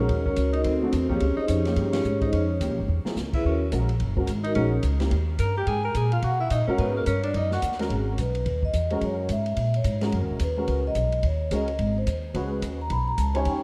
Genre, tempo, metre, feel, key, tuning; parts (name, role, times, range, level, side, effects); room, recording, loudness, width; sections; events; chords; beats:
jazz, small-group swing and bop; 216 BPM; 4/4; swing 61% on 8ths; G# minor; A4 = 440 Hz
vibraphone with soft mallets; melody; 0.0-13.6 s; C4 to B5; -30 LUFS; equal
clear alto saxophone; second line; 0.0-7.6 s; A#3 to A#4; -36 LUFS; equal
warm baby grand piano; accompaniment; 0.0-13.6 s; E3 to C#5; -34 LUFS; equal; ensemble chorus
upright bass; bass; 0.0-13.6 s; F#1 to B2; -28 LUFS; equal
open jazz drum kit; drums; 0.1-13.5 s; crash cymbal, hi-hat, kick drum, ride cymbal, snare drum; -37 LUFS; equal
moderate church reverb, RT60 3.3 s; dreamy mix soaked in reverb; -25 LUFS; mono
0.0-7.9 A section; 7.9-13.6 B section
band accent 1.9; drum fill 2.9; vibraphone solo 7.9-13.6
0.1 D#m7; 0.7 D9; 1.2 C#add9(#11); 2.3 Fm7b5; 2.9 Eadd9; 3.4 D#m7; 4.6 A#m7b5; 5.1 D#; 5.7 G#m9; 7.9 G#m7; 9.0 F#7; 10.1 Bmaj9; 11.2 D#m7; 11.8 G#5; 12.3 C#sus2
| 0.10 0.37 0.65 0.93 | 1.21 1.49 1.77 2.05 | 2.33 2.61 2.89 3.17 | 3.44 3.72 4.00 4.28 | 4.56 4.84 5.12 5.39 | 5.67 5.95 6.23 6.51 | 6.79 7.07 7.34 7.62 | 7.90 8.18 8.46 8.73 | 9.01 9.29 9.57 9.85 | 10.13 10.40 10.68 10.96 | 11.24 11.52 11.79 12.07 | 12.35 12.63 12.90 13.18 | 13.46